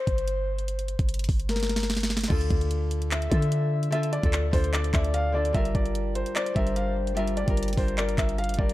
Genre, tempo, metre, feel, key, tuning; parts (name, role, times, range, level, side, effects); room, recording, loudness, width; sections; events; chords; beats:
hip hop, trap; 148 BPM; 4/4; half-time; D minor; A4 = 439 Hz
breathy flute-like synth lead; second line; 0.0-8.4 s; Bb4 to E5; -34 LUFS; left 4 dB; chorus, tape echo
clean 808-style bass; bass; 0.1-8.7 s; G1 to D3; -27 LUFS; equal
trap drum kit; drums; 0.1-8.7 s; crash cymbal, handclaps, hi-hat, kick drum, snare drum; -27 LUFS; equal
Celtic harp; accompaniment; 2.3-8.7 s; D3 to Bb4; -31 LUFS; left 3 dB; low-pass filter
felt-muted upright piano; melody; 3.9-8.7 s; C5 to F5; -31 LUFS; right 1 dB; low-pass filter, tape echo
digital ambience; dark, warm production; -23 LUFS; side -16 dB against mid
0.0-8.7 A section
break 0.0-3.9; drum fill 1.5-2.3
0.0 N.C.; 2.3 Dm; 5.5 Gm7
0.28 | 0.68 1.09 1.49 1.90 | 2.30 2.71 3.11 3.52 | 3.92 4.33 4.74 5.14 | 5.55 5.95 6.36 6.76 | 7.17 7.57 7.98 8.38